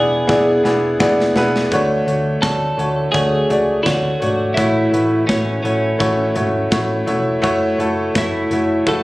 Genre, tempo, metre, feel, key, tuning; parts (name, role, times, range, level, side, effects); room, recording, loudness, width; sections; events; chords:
piano-driven pop; 84 BPM; 4/4; swing 56% on 16ths; A4 = 440 Hz
twelve-string electric guitar; melody; 0.0-9.0 s; C#4 to A4; -21 LUFS; equal
bright upright piano; accompaniment; 0.0-9.0 s; A2 to D5; -16 LUFS; equal
vintage muted picked electric bass; bass; 0.0-9.0 s; E1 to D2; -25 LUFS; equal
modern studio drum kit; drums; 0.3-9.0 s; hi-hat, kick drum, snare drum, toms; -22 LUFS; equal
moderate large studio reverb, RT60 1.1 s, studio ambience; recorded on a phone in the room, studio reverb; -14 LUFS; side -19 dB against mid
0.0-1.7 A section; 1.7-9.0 B section
drum fill 0.3-1.7
0.0 E7; 1.7 Dmaj7; 4.6 A6; 7.4 F#m7